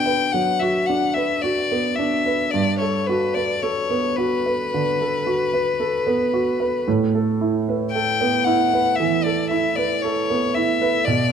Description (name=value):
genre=classical, impressionist duo for violin and grand piano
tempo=56 BPM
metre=4/4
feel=rubato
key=unclear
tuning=A4 = 441 Hz
part: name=clear violin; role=melody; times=0.0-11.3 s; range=B4 to G5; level=-22 LUFS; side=left 5 dB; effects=none
part: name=clear baby grand piano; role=accompaniment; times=0.0-11.3 s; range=G2 to B4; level=-21 LUFS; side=right 3 dB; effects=none
room=moderate recital hall reverb, RT60 1.6 s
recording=close, detailed microphones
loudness=-18 LUFS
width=side -7 dB against mid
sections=0.0-11.3 A section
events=none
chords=0.0 Bm; 2.5 Gmaj9; 6.9 Asus2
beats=0.33 1.43 | 2.54 3.63 4.72 5.80 | 6.86 7.93 8.98 10.03 | 11.06